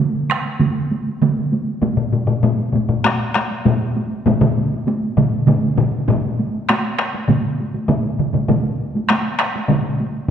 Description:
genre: japanese traditional, taiko drum ensemble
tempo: 99 BPM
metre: 4/4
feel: straight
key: none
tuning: none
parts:
  - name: taiko ensemble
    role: percussion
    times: 0.1-10.1 s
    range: none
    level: -21 LUFS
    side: right 1 dB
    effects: none
  - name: taiko ensemble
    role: percussion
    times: 0.3-9.8 s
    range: none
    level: -20 LUFS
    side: right 4 dB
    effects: none
  - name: taiko ensemble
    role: percussion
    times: 1.8-9.8 s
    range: none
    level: -19 LUFS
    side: left 4 dB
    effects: none
room: wet concert hall reverb, RT60 1.9 s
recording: dark, warm production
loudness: -16 LUFS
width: side -8 dB against mid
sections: 0.0-6.7 A section; 6.7-10.3 B section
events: speeding up 0.0-10.3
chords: none

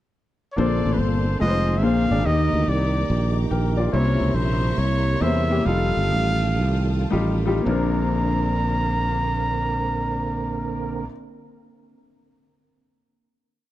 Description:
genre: uptempo gospel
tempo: 107-144 BPM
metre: 4/4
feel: swing 65% on 8ths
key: Bb major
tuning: A4 = 439 Hz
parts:
  - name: warm trumpet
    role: melody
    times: 0.5-11.1 s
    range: Cb5 to Bb5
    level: -27 LUFS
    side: equal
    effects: none
  - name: warm baby grand piano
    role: accompaniment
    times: 0.6-11.1 s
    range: Bb1 to G5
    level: -25 LUFS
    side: left 3 dB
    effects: none
  - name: rich studio string section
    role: sustained chords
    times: 0.6-11.1 s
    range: Eb4 to Eb6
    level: -38 LUFS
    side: left 5 dB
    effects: none
  - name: tonewheel organ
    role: sustained chords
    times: 0.6-11.1 s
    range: C3 to Bb4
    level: -28 LUFS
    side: right 4 dB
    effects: slow rotary speaker, chorus vibrato
  - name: sustaining fretless electric bass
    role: bass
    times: 0.6-11.1 s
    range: F1 to E2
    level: -23 LUFS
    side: equal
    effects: none
room: small room ambience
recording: dry, close 1970s-style studio recording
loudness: -19 LUFS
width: side -14 dB against mid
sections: 0.0-0.6 pickup bar; 0.6-7.7 breakdown; 7.7-12.1 final chord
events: slowing down 3.9-7.7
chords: 0.0 N.C.; 0.6 Bbmaj9; 1.4 Fm7; 1.8 Bb9; 2.3 Ebmaj7; 3.9 C7b9; 5.7 F9; 7.7 Bbadd9

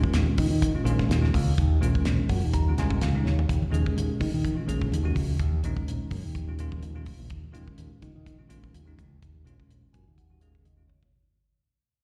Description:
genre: electric jazz fusion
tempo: 126 BPM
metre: 4/4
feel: swing 55% on 16ths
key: Eb minor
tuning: A4 = 440 Hz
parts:
  - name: bell-like tine electric piano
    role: accompaniment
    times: 0.0-11.1 s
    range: Bb2 to Bb5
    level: -32 LUFS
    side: equal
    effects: slapback echo
  - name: damped 70s drum kit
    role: drums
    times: 0.0-11.1 s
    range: hi-hat, kick drum, snare drum, toms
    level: -32 LUFS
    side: equal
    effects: none
  - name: fingered electric bass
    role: bass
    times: 0.1-11.1 s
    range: Bb1 to Eb3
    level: -28 LUFS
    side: equal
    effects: none
  - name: congas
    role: percussion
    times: 3.6-11.0 s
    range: none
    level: -40 LUFS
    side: equal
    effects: none
room: light reverb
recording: live gig heard through the venue's PA, recital hall reverb, faint mains hum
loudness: -26 LUFS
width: mono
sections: 0.0-11.1 A section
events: fade-out 0.0-11.1; tine electric piano fill 2.1-3.5, 9.7-11.1; drum fill 3.2, 10.9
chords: 0.0 Eb7sus2

